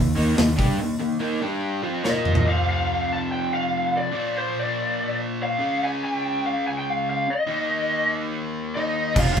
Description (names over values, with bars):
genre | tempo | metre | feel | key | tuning
hard rock | 143 BPM | 4/4 | straight | unclear | A4 = 440 Hz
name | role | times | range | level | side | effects
crunchy overdriven guitar | riff | 0.0-2.5, 9.2-9.4 s | F2 to Bb4 | -26 LUFS | equal | none
overdriven electric guitar | riff | 0.0-9.4 s | F2 to Bb4 | -27 LUFS | equal | none
fuzz fingered electric bass | bass | 0.0-0.8, 9.2-9.4 s | F1 to G2 | -24 LUFS | equal | overdrive
big rock drum kit | drums | 0.2-2.5, 9.2-9.4 s | crash cymbal, hi-hat, kick drum, snare drum, toms | -22 LUFS | equal | none
lead guitar through a small cranked amp | melody | 2.0-9.4 s | C5 to A5 | -24 LUFS | left 1 dB | overdrive
octave-fuzz lead guitar | second line | 8.8-9.4 s | Eb4 to F4 | -28 LUFS | right 3 dB | distortion
room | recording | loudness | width
wet small room reverb, RT60 0.5 s | band playing live in one room | -21 LUFS | side -7 dB against mid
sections
0.0-2.5 A section; 2.5-9.4 B section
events
break 0.8-2.5; drum fill 2.0-2.5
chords
0.0 Eb5; 1.4 G5; 1.8 F5; 2.0 Bb5; 2.5 F5; 4.1 Bb; 5.6 Db5; 7.5 Eb5